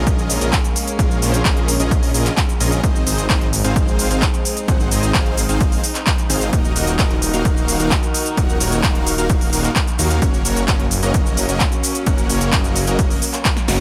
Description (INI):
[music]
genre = EDM, festival progressive house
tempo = 130 BPM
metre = 4/4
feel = straight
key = unclear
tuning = A4 = 442 Hz
[part]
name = warm chamber string section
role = sustained chords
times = 0.0-13.8 s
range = Eb3 to Bb4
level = -28 LUFS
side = equal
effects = sidechain pumping
[part]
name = dense compressed supersaw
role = riff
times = 0.0-13.8 s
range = Bb3 to Gb5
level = -26 LUFS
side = equal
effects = sidechain pumping, tape echo
[part]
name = detuned saw bass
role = bass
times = 0.0-13.8 s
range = Eb1 to Eb2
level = -24 LUFS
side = equal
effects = tube saturation, sidechain pumping
[part]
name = impact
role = sound effects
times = 0.1-1.0 s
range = none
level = barely audible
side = none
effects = none
[part]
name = big-room dance drum kit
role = drums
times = 0.1-13.8 s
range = handclaps, hi-hat, shaker, snare drum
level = -24 LUFS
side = equal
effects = overdrive
[part]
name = electronic kick drum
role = drums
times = 0.1-13.5 s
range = none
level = -21 LUFS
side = equal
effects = overdrive
[sound]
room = little or no reverb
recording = none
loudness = -17 LUFS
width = mono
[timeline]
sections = 0.0-13.8 A section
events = impact 0.0-1.0; drum fill 13.6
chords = 0.0 Bbm7; 2.8 Ab; 6.5 Ebm; 10.2 Gb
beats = 0.07 0.53 | 0.99 1.45 1.91 2.38 | 2.84 3.30 3.76 4.22 | 4.68 5.14 5.61 6.07 | 6.53 6.99 7.45 7.91 | 8.38 8.84 9.30 9.76 | 10.22 10.68 11.14 11.61 | 12.07 12.53 12.99 13.45